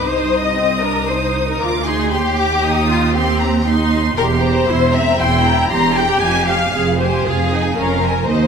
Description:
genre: quick classical-period movement for symphony orchestra.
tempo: 117 BPM.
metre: 4/4.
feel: straight.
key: C minor, F minor from 4.2 s.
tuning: A4 = 440 Hz.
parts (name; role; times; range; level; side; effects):
clear studio violin section; melody; 0.0-8.5 s; Eb5 to Eb6; -23 LUFS; left 2 dB; none.
rich studio violin section; second line; 0.0-8.5 s; F4 to Bb5; -18 LUFS; left 4 dB; none.
clear studio viola section; accompaniment; 0.0-8.5 s; C4 to Ab4; -22 LUFS; right 2 dB; none.
rich studio cello section; bass; 0.0-8.5 s; C2 to F2; -21 LUFS; right 3 dB; none.
rich studio double bass section; bass; 0.0-8.5 s; E1 to Eb2; -21 LUFS; right 4 dB; none.
room: moderate concert hall reverb, RT60 2.1 s.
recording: none.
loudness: -14 LUFS.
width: side -6 dB against mid.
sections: 0.0-8.5 A section.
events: none.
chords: 0.1 Cm; 2.1 Cm/Eb; 4.2 C7/E; 6.2 Fm.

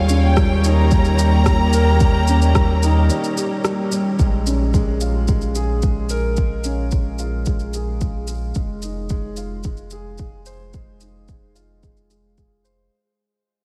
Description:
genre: piano and strings electronica.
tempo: 110 BPM.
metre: 4/4.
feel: straight.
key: Bb dorian.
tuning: A4 = 441 Hz.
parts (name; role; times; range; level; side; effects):
clear studio violin section; melody; 0.0-3.6 s; F5 to Bb5; -29 LUFS; equal; tape echo.
warm studio string section; sustained chords; 0.0-4.2 s; Eb3 to Db5; -27 LUFS; equal; sidechain pumping.
warm upright piano; riff; 0.0-12.9 s; G3 to C5; -25 LUFS; equal; subtle chorus, tape echo.
warm sub bass; bass; 0.0-12.9 s; F1 to Eb2; -22 LUFS; equal; tube saturation, sidechain pumping.
electronic shaker and rim click; drums; 0.1-12.8 s; none; -31 LUFS; equal; small room reverb.
electronic kick drum; drums; 0.4-12.5 s; none; -21 LUFS; equal; small room reverb.
room: moderate huge ambient reverb, RT60 8.1 s.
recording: dreamy mix soaked in reverb.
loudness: -18 LUFS.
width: mono.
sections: 0.0-4.2 A section; 4.2-12.9 B section.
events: drop 0.0-4.2; break 3.1-4.2; fade-out 4.2-12.9.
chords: 0.0 Eb7; 4.2 Bbm7; 8.6 Fm7.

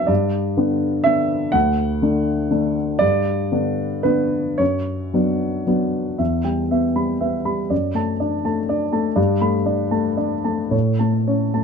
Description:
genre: neoclassical minimalist piano.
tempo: 108-126 BPM.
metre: 3/4.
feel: rubato.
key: unclear.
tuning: A4 = 443 Hz.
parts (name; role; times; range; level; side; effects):
dark grand piano; solo; 0.0-11.6 s; D2 to B5; -18 LUFS; equal; none.
room: light reverb.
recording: dark, warm production.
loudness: -18 LUFS.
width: side -6 dB against mid.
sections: 0.0-6.2 A section; 6.2-11.6 B section.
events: none.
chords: 0.1 G; 1.5 D; 3.0 G; 4.6 Bmadd9/F#; 6.2 Em; 7.7 D/F#; 9.2 Gadd9; 10.7 A.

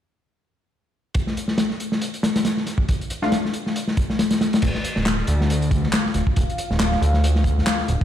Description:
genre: breakbeat, breaks.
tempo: 138 BPM.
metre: 4/4.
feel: swing 56% on 16ths.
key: D minor pentatonic.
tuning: A4 = 441 Hz.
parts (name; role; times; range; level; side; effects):
crunchy breakbeat drum kit; drums; 1.1-8.0 s; crash cymbal, hi-hat, kick drum, snare drum; -21 LUFS; left 1 dB; none.
orchestra-hit-like synth stab; stabs; 3.2-3.3 s; A3 to F4; -26 LUFS; left 2 dB; built-in reverb, tape echo.
deep dark ambient pad; sustained chords; 6.0-8.0 s; D4 to F5; -29 LUFS; equal; chorus, built-in reverb, sidechain pumping.
fat analog bass; bass; 4.6-8.0 s; D1 to D2; -20 LUFS; equal; tube saturation.
electronic handclaps; drums; 5.1-7.8 s; none; -26 LUFS; right 1 dB; none.
room: light reverb.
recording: played on a big sound system in a bare room, large studio reverb.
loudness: -19 LUFS.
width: side -10 dB against mid.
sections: 1.1-4.6 A section; 4.6-8.0 B section.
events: none.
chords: 1.1 Dm.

